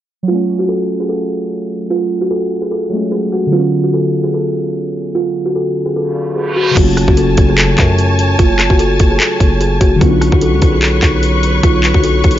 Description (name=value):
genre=hip hop, trap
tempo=148 BPM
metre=4/4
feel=half-time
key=F# harmonic minor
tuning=A4 = 440 Hz
part: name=muted felt-like synth keys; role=accompaniment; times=0.2-12.4 s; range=C#3 to D4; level=-19 LUFS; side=left 1 dB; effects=chorus, phaser
part: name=kalimba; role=melody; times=0.3-12.4 s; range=E#4 to A4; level=-16 LUFS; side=right 1 dB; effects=none
part: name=reverse cymbal and impact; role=sound effects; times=6.2-8.4 s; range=none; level=-22 LUFS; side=right 2 dB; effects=none
part: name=clear symphonic string section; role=sustained chords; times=6.8-12.4 s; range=B4 to C#6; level=-20 LUFS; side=left 1 dB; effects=none
part: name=growling 808-style bass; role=bass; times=6.8-12.4 s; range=F#1 to F#2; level=-15 LUFS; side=equal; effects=none
part: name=trap drum kit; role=drums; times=6.8-12.4 s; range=crash cymbal, handclaps, hi-hat, kick drum, rim click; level=-13 LUFS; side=equal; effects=none
room=little or no reverb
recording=low-pass filter, nothing above 7.5 kHz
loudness=-11 LUFS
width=side -12 dB against mid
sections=0.3-6.8 A section; 6.8-12.4 B section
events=filter sweep 0.3-6.8; reverse cymbal 6.2-6.8; impact 6.8-8.4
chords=0.3 F#madd9; 3.5 Bmadd9; 6.8 F#madd9; 10.0 Bmadd9